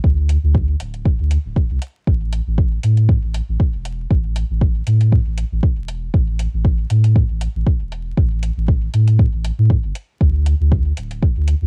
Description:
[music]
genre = dub techno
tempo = 118 BPM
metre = 4/4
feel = swing 54% on 16ths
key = unclear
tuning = A4 = 440 Hz
[part]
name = soft dub sub bass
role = bass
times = 0.0-11.7 s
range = D1 to A2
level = -20 LUFS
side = equal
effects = sidechain pumping
[part]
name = electronic kick drum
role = drums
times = 0.0-11.3 s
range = none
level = -18 LUFS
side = equal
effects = cassette tape
[part]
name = electronic hi-hat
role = drums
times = 0.3-11.6 s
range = none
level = -38 LUFS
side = equal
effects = cassette tape
[sound]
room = little or no reverb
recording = home recording on cassette, vinyl crackle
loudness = -18 LUFS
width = mono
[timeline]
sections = 0.0-11.7 A section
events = none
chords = none

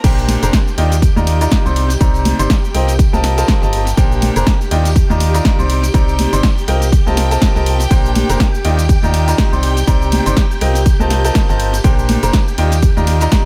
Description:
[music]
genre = piano house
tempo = 122 BPM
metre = 4/4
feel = swing 57% on 16ths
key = F mixolydian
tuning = A4 = 442 Hz
[part]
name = string machine, violins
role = sustained chords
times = 0.0-13.5 s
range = G4 to G5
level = -27 LUFS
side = equal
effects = ensemble chorus, sidechain pumping
[part]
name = bright upright piano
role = riff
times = 0.0-13.4 s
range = Bb2 to C6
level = -21 LUFS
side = equal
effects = sidechain pumping, tape echo
[part]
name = organ-like FM bass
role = bass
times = 0.0-13.3 s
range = F1 to Eb2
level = -18 LUFS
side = equal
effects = sidechain pumping
[part]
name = electronic kick drum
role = drums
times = 0.0-13.4 s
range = none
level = -16 LUFS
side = equal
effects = none
[part]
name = punchy analog drum machine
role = drums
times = 0.0-13.4 s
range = crash cymbal, hi-hat, ride cymbal, shaker, snare drum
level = -24 LUFS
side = equal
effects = tape echo
[part]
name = tambourine and congas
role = percussion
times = 0.0-13.4 s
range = none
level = -27 LUFS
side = equal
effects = none
[sound]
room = little or no reverb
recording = echo-heavy mix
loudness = -14 LUFS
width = mono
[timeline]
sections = 0.0-13.5 A section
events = none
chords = 0.0 Bb69; 0.8 Ebmaj9; 1.8 Cm9; 2.7 F9sus4/C; 4.0 Bb69; 4.7 Ebmaj9; 5.7 Cm9; 6.7 F9sus4/C; 7.9 Bb69; 8.6 Ebmaj9; 9.6 Cm9; 10.6 F9sus4/C; 11.8 Bb69; 12.6 Ebmaj9

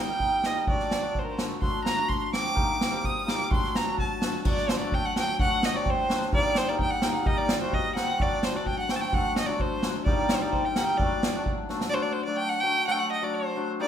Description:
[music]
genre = klezmer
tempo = 128 BPM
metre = 2/4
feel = straight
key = D phrygian dominant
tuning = A4 = 440 Hz
[part]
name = rich violin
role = melody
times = 0.0-13.9 s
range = Bb4 to Eb6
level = -28 LUFS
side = right 1 dB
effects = none
[part]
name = hammered dulcimer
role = accompaniment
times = 0.0-13.9 s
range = F#3 to F#4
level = -29 LUFS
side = left 2 dB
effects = none
[part]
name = street-band drum kit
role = drums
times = 0.2-11.9 s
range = crash cymbal, kick drum, snare drum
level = -28 LUFS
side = right 1 dB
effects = none
[sound]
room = moderate recital hall reverb, RT60 1.3 s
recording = minimal, uncompressed stereo recording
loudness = -24 LUFS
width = side -9 dB against mid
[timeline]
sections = 0.0-4.5 A section; 4.5-11.9 B section; 11.9-13.9 B section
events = violin solo 0.0-4.5; drum fill 11.7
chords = 0.0 Eb; 0.7 D; 2.6 Eb; 3.5 D; 6.3 Eb; 8.2 D; 10.1 Eb; 11.0 D

